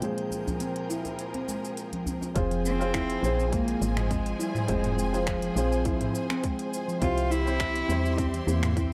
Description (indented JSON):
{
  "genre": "organic downtempo",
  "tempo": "103 BPM",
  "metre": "4/4",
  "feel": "swing 53% on 16ths",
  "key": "F harmonic minor",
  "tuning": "A4 = 440 Hz",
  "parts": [
    { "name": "felt-muted upright piano", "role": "accompaniment", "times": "0.0-8.9 s", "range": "Bb2 to C5", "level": "-35 LUFS", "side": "equal", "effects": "sidechain pumping, delay" },
    { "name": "clear symphonic string section", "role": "sustained chords", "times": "0.0-8.9 s", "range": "F3 to C6", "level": "-40 LUFS", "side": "equal", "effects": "sidechain pumping" },
    { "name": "handpan", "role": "arpeggios", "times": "0.0-8.9 s", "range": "E3 to E4", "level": "-36 LUFS", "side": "equal", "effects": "delay" },
    { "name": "organic electronic drum kit", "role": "drums", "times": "0.0-8.9 s", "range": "finger snaps, hi-hat, shaker, toms", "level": "-37 LUFS", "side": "equal", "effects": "none" },
    { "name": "twinkling granular texture", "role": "texture", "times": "0.0-2.4 s", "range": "G5", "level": "-50 LUFS", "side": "equal", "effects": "built-in reverb" },
    { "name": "djembe", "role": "percussion", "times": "0.3-2.3 s", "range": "none", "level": "-41 LUFS", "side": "equal", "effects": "none" },
    { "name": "woody FM bass", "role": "bass", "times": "2.4-8.9 s", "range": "F1 to E2", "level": "-31 LUFS", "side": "equal", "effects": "sidechain pumping" },
    { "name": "electronic kick drum", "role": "drums", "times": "2.4-8.9 s", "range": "none", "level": "-34 LUFS", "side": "equal", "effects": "none" },
    { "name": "warm cello", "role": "melody", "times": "2.7-8.9 s", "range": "F3 to F4", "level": "-35 LUFS", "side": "equal", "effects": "tape echo" }
  ],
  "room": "light reverb, small room ambience",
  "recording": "none",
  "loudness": "-28 LUFS",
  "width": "mono",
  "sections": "0.0-2.4 A section; 2.4-8.9 B section",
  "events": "none",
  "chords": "0.0 Bb5; 2.4 Fm; 7.0 C",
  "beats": "| 0.03 0.61 1.19 1.77 | 2.36 2.94 3.52 4.10 | 4.69 5.27 5.85 6.43 | 7.02 7.60 8.18 8.76"
}